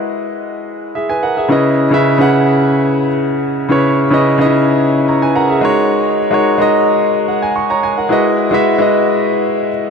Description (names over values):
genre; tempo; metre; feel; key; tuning
amapiano; 109 BPM; 4/4; straight; C# dorian; A4 = 440 Hz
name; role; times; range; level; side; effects
clear concert grand piano; solo; 0.0-9.9 s; C#3 to C#6; -11 LUFS; equal; analog delay
room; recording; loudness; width
moderate huge ambient reverb, RT60 4.0 s; dreamy mix soaked in reverb; -11 LUFS; side -6 dB against mid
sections
0.0-1.5 A section; 1.5-9.9 B section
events
drop 1.5-9.9; grand piano fill 5.1-5.9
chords
0.0 Emaj9/G#; 1.5 C#m9; 5.6 G#9sus4; 8.1 Emaj9/G#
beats
0.40 0.95 | 1.50 2.05 2.60 3.15 | 3.70 4.25 4.80 5.35 | 5.90 6.46 7.00 7.56 | 8.11 8.66 9.21 9.76